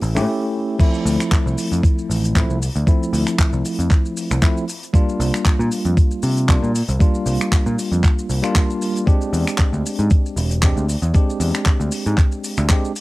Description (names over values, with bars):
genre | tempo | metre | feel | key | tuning
nu-disco, nu disco | 116 BPM | 4/4 | swing 54% on 16ths | D minor | A4 = 440 Hz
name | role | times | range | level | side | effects
bell-like tine electric piano | accompaniment | 0.0-12.9 s | F3 to G4 | -23 LUFS | equal | medium stereo tremolo, analog delay
overdriven picked electric bass | bass | 0.0-12.7 s | E1 to C3 | -19 LUFS | equal | none
damped 70s drum kit | drums | 0.0-13.0 s | crash cymbal, finger snaps, handclaps, hi-hat, shaker | -26 LUFS | equal | cassette tape
electronic kick drum | drums | 0.8-12.8 s | none | -15 LUFS | equal | cassette tape
room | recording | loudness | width
little or no reverb | home recording on cassette | -16 LUFS | side -19 dB against mid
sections
0.8-13.0 A section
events
break 0.3-0.8; drop 0.8-13.0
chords
0.0 A7; 0.8 Dm7 (rootless); 4.9 C9sus4; 9.1 E7alt